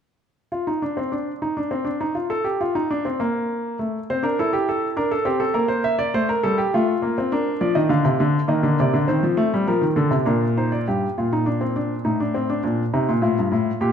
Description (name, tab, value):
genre	classical, baroque-style 3-part fugue for grand piano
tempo	102 BPM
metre	3/4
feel	straight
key	Bb major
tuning	A4 = 440 Hz
part	warm baby grand piano	solo	0.5-13.9 s	G2 to F5	-19 LUFS	equal	none
room	moderate recital hall reverb, RT60 1.4 s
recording	minimal, uncompressed stereo recording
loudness	-19 LUFS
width	side -8 dB against mid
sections	0.2-10.9 A section; 10.9-13.9 B section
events	none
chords	0.2 N.C.; 3.8 Amadd11; 5.0 Bb/D; 5.6 C7/Bb; 6.7 F/A; 7.3 Bb; 8.5 Eb5; 9.1 F7/Eb; 10.3 Bb; 10.9 Eb/G (rootless); 12.1 Amadd11; 12.6 Bb